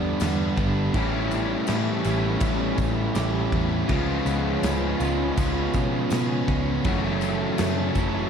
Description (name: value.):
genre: rock, shoegaze and dream pop.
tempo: 81 BPM.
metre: 4/4.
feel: straight.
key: unclear.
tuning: A4 = 440 Hz.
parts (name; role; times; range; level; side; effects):
hollow soft pad; sustained chords; 0.0-8.3 s; E#4 to B5; -35 LUFS; right 1 dB; chorus.
twelve-string electric guitar; arpeggios; 0.0-8.3 s; E3 to G#4; -35 LUFS; right 7 dB; none.
crunchy overdriven guitar; riff; 0.0-8.3 s; F#2 to G4; -28 LUFS; left 10 dB; analog chorus.
distorted electric guitar; riff; 0.0-8.3 s; F#2 to E4; -31 LUFS; left 1 dB; overdrive.
overdriven electric guitar; riff; 0.0-8.3 s; F#2 to G4; -28 LUFS; right 9 dB; reverse reverb.
vintage muted picked electric bass; bass; 0.0-8.3 s; F#1 to B2; -28 LUFS; equal; none.
loose indie drum kit; drums; 0.2-8.1 s; crash cymbal, kick drum, snare drum; -30 LUFS; equal; none.
tambourine; percussion; 0.2-8.1 s; none; -45 LUFS; left 12 dB; none.
room: light reverb, small room ambience.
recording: dark, warm production.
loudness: -22 LUFS.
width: side -7 dB against mid.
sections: 0.0-8.3 A section.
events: none.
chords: 0.0 Gmaj7; 0.9 Asus2; 3.9 C#7; 6.8 F#m7.